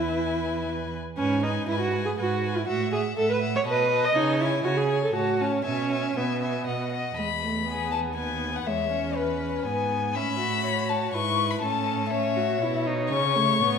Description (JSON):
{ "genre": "quick classical-period movement for string quartet", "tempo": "121 BPM", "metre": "3/4", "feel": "straight", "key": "E major", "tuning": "A4 = 440 Hz", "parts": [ { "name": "dark violin", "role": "melody", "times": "0.0-13.8 s", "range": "B4 to C#6", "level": "-29 LUFS", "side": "left 10 dB", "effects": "none" }, { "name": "warm violin", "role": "second line", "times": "0.0-13.8 s", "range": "G#4 to G#5", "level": "-32 LUFS", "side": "left 4 dB", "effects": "none" }, { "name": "warm viola", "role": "accompaniment", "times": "0.0-13.8 s", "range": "G#3 to D#5", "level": "-27 LUFS", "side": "right 2 dB", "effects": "none" }, { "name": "rich cello", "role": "bass", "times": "0.0-13.8 s", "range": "D#2 to C#3", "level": "-30 LUFS", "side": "right 5 dB", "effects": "none" } ], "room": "moderate scoring stage reverb, RT60 1.7 s", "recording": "minimal, uncompressed stereo recording", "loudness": "-23 LUFS", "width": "side -6 dB against mid", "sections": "0.0-7.2 A section; 7.2-13.8 B section", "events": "none", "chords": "0.0 E; 1.2 G#m7; 2.7 F#m7/A; 3.7 B7; 4.2 C#5; 5.1 F#m/A; 5.7 E/B; 6.7 B; 7.2 E; 8.2 B/D#; 8.7 E; 10.2 A; 11.1 E/G#; 11.6 A; 13.1 A/C#", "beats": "0.15 0.66 | 1.17 1.67 2.17 | 2.67 3.17 3.66 | 4.15 4.65 5.15 | 5.65 6.17 6.67 | 7.18 7.68 8.18 | 8.67 9.17 9.66 | 10.15 10.65 11.14 | 11.63 12.12 12.61 | 13.10 13.60" }